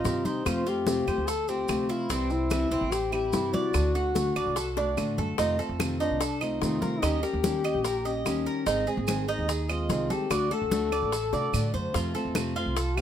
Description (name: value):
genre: latin, Cuban son and guajira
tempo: 146 BPM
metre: 4/4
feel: straight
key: unclear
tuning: A4 = 438 Hz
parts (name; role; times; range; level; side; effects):
- dark duduk; melody; 0.0-13.0 s; C4 to A4; -30 LUFS; left 4 dB; none
- fingerpicked plugged-in steel-string acoustic guitar; accompaniment; 0.0-13.0 s; C3 to Ab4; -32 LUFS; left 2 dB; none
- Cuban tres; arpeggios; 0.0-13.0 s; C4 to F5; -32 LUFS; right 5 dB; none
- upright bass; bass; 0.0-13.0 s; Ab1 to C3; -32 LUFS; right 1 dB; none
- congas; percussion; 0.0-13.0 s; none; -34 LUFS; left 1 dB; none
- maracas; percussion; 0.0-13.0 s; none; -40 LUFS; right 4 dB; none
- bongos; percussion; 0.1-13.0 s; none; -35 LUFS; left 8 dB; none
- claves; percussion; 0.5-13.0 s; none; -38 LUFS; right 7 dB; none
room: light reverb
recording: minimal, uncompressed stereo recording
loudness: -25 LUFS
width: side -9 dB against mid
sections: 0.0-5.4 A section; 5.4-13.0 B section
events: drum fill 4.8-5.4, 11.3-12.0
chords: 0.5 F; 2.1 C; 3.7 D; 5.4 F7; 7.0 Eb7; 8.7 Ab; 10.3 D; 12.0 F